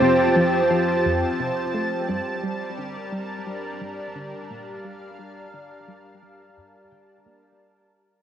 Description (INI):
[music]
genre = ambient, sequencer-driven space music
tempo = 87 BPM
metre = 4/4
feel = straight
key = unclear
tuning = A4 = 439 Hz
[part]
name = lush unison pad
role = sustained chords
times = 0.0-7.6 s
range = F3 to E6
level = -22 LUFS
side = right 1 dB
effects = chorus, cassette tape
[part]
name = clean electric guitar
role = arpeggios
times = 0.0-7.6 s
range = C4 to G5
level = -41 LUFS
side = equal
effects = none
[part]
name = tight sequenced synth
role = riff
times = 0.0-7.4 s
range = F2 to Bb3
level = -28 LUFS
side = left 2 dB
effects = chorus, phaser, vintage 12-bit sampler grit, cassette tape, ping-pong delay
[part]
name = analog drone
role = bass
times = 0.0-7.6 s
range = F2 to G2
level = -44 LUFS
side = equal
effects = chorus
[sound]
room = wet spring reverb, RT60 2.0 s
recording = home recording on cassette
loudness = -21 LUFS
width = side -9 dB against mid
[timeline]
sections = 0.0-7.6 A section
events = fade-out on synth drone 0.0-7.6; fade-out 0.0-7.6; filter sweep on synth arpeggio sound 0.0-7.6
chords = 0.0 Fmaj7; 2.1 Gm7